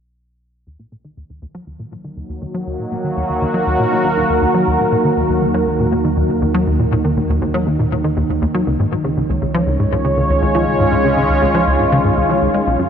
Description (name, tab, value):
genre	ambient, sequencer-driven space music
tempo	120 BPM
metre	4/4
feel	straight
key	Eb minor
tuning	A4 = 437 Hz
part	sweeping resonant pad	sustained chords	2.4-12.9 s	Eb3 to Db5	-16 LUFS	right 1 dB	chorus
part	plucky analog bass	riff	0.7-12.9 s	B1 to Ab3	-19 LUFS	equal	wide subtle chorus, ping-pong delay
part	warm sub bass	bass	4.7-12.9 s	Db2 to Eb2	-25 LUFS	equal	none
room	wet huge ambient reverb, RT60 7.6 s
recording	faint mains hum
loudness	-14 LUFS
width	side -8 dB against mid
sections	0.7-4.7 A section; 4.7-12.9 B section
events	fade-in on analog synth bass 0.7-4.7; fade-in on analog synth pad 0.7-4.7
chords	0.7 Ebm; 8.7 Dbadd9